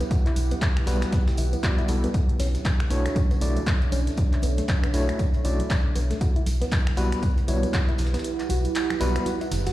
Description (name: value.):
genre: deep house.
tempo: 118 BPM.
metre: 4/4.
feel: swing 59% on 16ths.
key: unclear.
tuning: A4 = 439 Hz.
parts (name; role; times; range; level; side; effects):
soft round pluck; arpeggios; 0.0-9.7 s; A3 to F#4; -35 LUFS; left 2 dB; chorus, sidechain pumping, dub echo.
sub bass with octave; bass; 0.0-9.7 s; F#1 to B1; -25 LUFS; equal; sidechain pumping.
dusty soul sampler-style drum kit; drums; 0.0-9.7 s; hi-hat, snare drum, tambourine; -43 LUFS; left 1 dB; sidechain pumping on perc, high-pass filter on perc, studio reverb, sidechain pumping on hats, high-pass filter on hats, high-pass filter on snare, high-pass filter on room.
punchy analog drum machine; drums; 0.0-9.7 s; finger snaps, handclaps, hi-hat; -34 LUFS; equal; studio reverb.
tambourine; percussion; 0.0-9.7 s; none; -45 LUFS; right 2 dB; none.
deep dark ambient pad; texture; 0.0-9.7 s; D4 to F#5; -32 LUFS; right 3 dB; chorus, built-in reverb, sidechain pumping.
electronic kick drum; drums; 0.1-7.9 s; none; -23 LUFS; equal; studio reverb.
congas; percussion; 0.4-9.7 s; none; -38 LUFS; right 3 dB; sidechain pumping on perc.
overdriven tine electric piano; stabs; 0.9-9.3 s; G3 to D5; -30 LUFS; equal; fast tremolo, sidechain pumping, dub echo.
room: light reverb.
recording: played on a big sound system in a bare room, large studio reverb.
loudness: -21 LUFS.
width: side -15 dB against mid.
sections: 0.0-9.7 A section.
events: kick drops out 8.2-9.7.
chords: 0.0 Emadd9/B; 2.1 Bm11; 6.2 Emadd9/B.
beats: | 0.11 0.62 1.12 1.63 | 2.14 2.65 3.16 3.67 | 4.18 4.68 5.19 5.70 | 6.21 6.72 7.23 7.74 | 8.24 8.75 9.26.